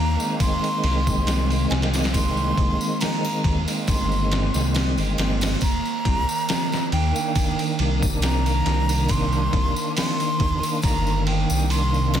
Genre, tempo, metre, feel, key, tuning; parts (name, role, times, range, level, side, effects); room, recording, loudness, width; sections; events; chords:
trip hop; 69 BPM; 4/4; swing 54% on 16ths; C minor; A4 = 440 Hz
breathy mellow silver concert flute; melody; 0.0-12.2 s; G5 to C6; -28 LUFS; right 1 dB; tape echo
warbly tape-like pad; sustained chords; 0.0-12.2 s; Eb3 to Bb3; -29 LUFS; right 2 dB; chorus, built-in reverb
dark detuned saw bass; bass; 0.0-12.2 s; G1 to Eb2; -23 LUFS; left 1 dB
tonewheel organ; accompaniment; 0.2-12.2 s; Eb3 to D4; -27 LUFS; equal; overdrive, chorus vibrato, slow rotary speaker, tremolo
tambourine and triangle; percussion; 0.2-12.2 s; -35 LUFS; left 2 dB
trip hop sampler-style drum kit; drums; 0.4-12.2 s; hi-hat, kick drum, ride cymbal, snare drum; -25 LUFS; equal; overdrive
digital ambience; dense, heavily limited modern master; -19 LUFS; side -10 dB against mid
0.0-5.6 A section; 5.6-12.2 B section
0.0 Ab/C; 5.6 Cm7